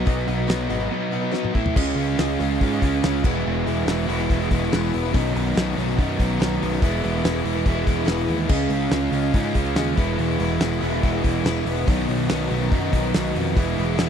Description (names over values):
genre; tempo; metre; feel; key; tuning
classic rock; 142 BPM; 4/4; straight; unclear; A4 = 440 Hz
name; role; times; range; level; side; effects
picked plugged-in swing-style acoustic guitar; accompaniment; 0.0-14.1 s; Cb3 to E5; -30 LUFS; left 14 dB; none
crunchy overdriven guitar; riff; 0.0-14.1 s; A2 to F4; -25 LUFS; right 11 dB; none
distorted electric guitar; riff; 0.0-14.1 s; A2 to F4; -27 LUFS; left 13 dB; distortion
fuzz picked electric bass; bass; 0.0-14.1 s; E1 to Ab2; -26 LUFS; equal; overdrive
damped 70s drum kit; drums; 0.1-14.1 s; crash cymbal, hi-hat, kick drum, snare drum, toms; -24 LUFS; equal; none
room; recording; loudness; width
small room ambience; dry, close 1970s-style studio recording; -19 LUFS; side -8 dB against mid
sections
0.0-1.8 A section; 1.8-14.1 B section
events
drum fill 1.3-1.8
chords
0.0 Cb; 1.6 A5; 1.8 Dbadd9; 3.2 E; 5.1 Cbadd9; 6.8 E; 8.5 Dbadd9; 10.0 E; 11.9 Cbadd9; 13.6 E